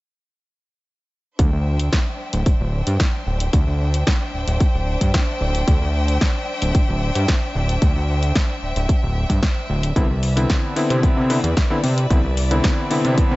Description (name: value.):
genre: nu-disco, nu disco.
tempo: 112 BPM.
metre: 4/4.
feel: straight.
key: unclear.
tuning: A4 = 438 Hz.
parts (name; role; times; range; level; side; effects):
clear studio violin section; sustained chords; 1.4-13.4 s; D4 to G5; -27 LUFS; left 1 dB; sidechain pumping.
fat analog bass; bass; 1.4-13.4 s; D1 to C3; -20 LUFS; equal; tube saturation.
electronic kick drum; drums; 1.4-13.3 s; none; -18 LUFS; equal; none.
house drum kit; drums; 1.4-13.3 s; hi-hat, snare drum; -26 LUFS; equal; none.
clear electric grand piano; accompaniment; 10.0-13.4 s; D3 to E4; -22 LUFS; left 1 dB; dub echo.
room: digital ambience.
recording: nothing above 7.9 kHz.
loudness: -17 LUFS.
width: side -20 dB against mid.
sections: 1.4-13.4 A section.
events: none.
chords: 1.4 D9sus4; 10.0 Cmaj9.